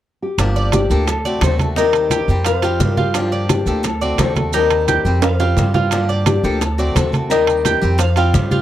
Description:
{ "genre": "latin, Cuban son and guajira", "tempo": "173 BPM", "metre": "4/4", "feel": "straight", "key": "G minor", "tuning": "A4 = 440 Hz", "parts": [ { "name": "nylon-string guitar", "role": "melody", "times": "0.2-8.6 s", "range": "F4 to C5", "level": "-20 LUFS", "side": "left 5 dB", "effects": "none" }, { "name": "picked swing-style acoustic guitar", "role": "accompaniment", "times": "0.4-8.6 s", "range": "D3 to G4", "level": "-24 LUFS", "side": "left 3 dB", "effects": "none" }, { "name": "upright bass", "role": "bass", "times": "0.4-8.6 s", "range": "G1 to G2", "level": "-19 LUFS", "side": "right 1 dB", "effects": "none" }, { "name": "bongos", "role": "percussion", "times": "0.4-8.6 s", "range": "none", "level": "-26 LUFS", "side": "left 6 dB", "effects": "none" }, { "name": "congas", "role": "percussion", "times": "0.4-8.6 s", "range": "none", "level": "-22 LUFS", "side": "equal", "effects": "none" }, { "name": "maracas", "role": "percussion", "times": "0.4-8.6 s", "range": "none", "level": "-30 LUFS", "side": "right 17 dB", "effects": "none" }, { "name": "timbales", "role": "percussion", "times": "0.4-8.3 s", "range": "none", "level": "-24 LUFS", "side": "right 9 dB", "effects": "none" }, { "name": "Cuban tres", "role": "arpeggios", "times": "0.6-8.6 s", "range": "Eb4 to F5", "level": "-22 LUFS", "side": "right 6 dB", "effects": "none" } ], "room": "little or no reverb", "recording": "dry, close 1970s-style studio recording", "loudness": "-14 LUFS", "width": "side -12 dB against mid", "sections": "0.4-8.6 A section", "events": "drum fill 5.2-5.9", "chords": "0.4 Gm7; 1.1 D7; 1.8 Eb6; 2.5 Fsus2; 3.1 Gm7; 3.8 D7; 4.5 Eb6; 5.2 Fsus2; 5.9 Gm7; 6.6 D7; 7.3 Eb6; 8.0 Fsus2", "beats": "0.04 | 0.38 0.73 1.07 1.42 | 1.76 2.11 2.46 2.80 | 3.15 3.49 3.84 4.19 | 4.53 4.88 5.22 5.57 | 5.92 6.26 6.61 6.95 | 7.30 7.65 7.99 8.34" }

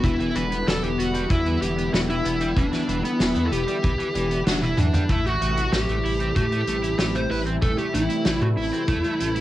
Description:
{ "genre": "synthwave", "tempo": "95 BPM", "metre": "4/4", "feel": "straight", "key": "A minor", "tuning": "A4 = 439 Hz", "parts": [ { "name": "dark smooth lead guitar", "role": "melody", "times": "0.0-9.4 s", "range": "B3 to C5", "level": "-25 LUFS", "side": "equal", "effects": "overdrive, cassette tape, analog delay, plate reverb" }, { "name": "lush unison pad", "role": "sustained chords", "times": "0.0-9.4 s", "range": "C3 to E4", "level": "-29 LUFS", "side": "equal", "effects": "chorus, phaser, sidechain pumping, cassette tape, plate reverb" }, { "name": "crunchy overdriven guitar", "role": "riff", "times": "0.0-9.4 s", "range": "E3 to E4", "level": "-32 LUFS", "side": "right 2 dB", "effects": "wide subtle chorus, low-pass filter, cassette tape, analog delay" }, { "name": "dark detuned saw bass", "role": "bass", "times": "0.0-9.4 s", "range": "E1 to A2", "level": "-26 LUFS", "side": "equal", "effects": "sidechain pumping" }, { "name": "kick drum", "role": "drums", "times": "0.0-9.0 s", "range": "none", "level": "-24 LUFS", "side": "equal", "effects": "cassette tape" }, { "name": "loose indie drum kit", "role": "drums", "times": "0.0-9.4 s", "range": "hi-hat, snare drum, toms", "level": "-27 LUFS", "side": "equal", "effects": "cassette tape" } ], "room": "wet studio ambience, RT60 0.5 s", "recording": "home recording on cassette", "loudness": "-20 LUFS", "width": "side -14 dB against mid", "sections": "0.0-5.1 A section; 5.1-9.4 B section", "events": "band accent 4.5-4.8; drum fill 4.6-5.1", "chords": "0.0 Em7; 5.1 Am7", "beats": "| 0.04 0.68 1.31 1.94 | 2.57 3.20 3.83 4.47 | 5.10 5.73 6.36 6.99 | 7.62 8.26 8.89" }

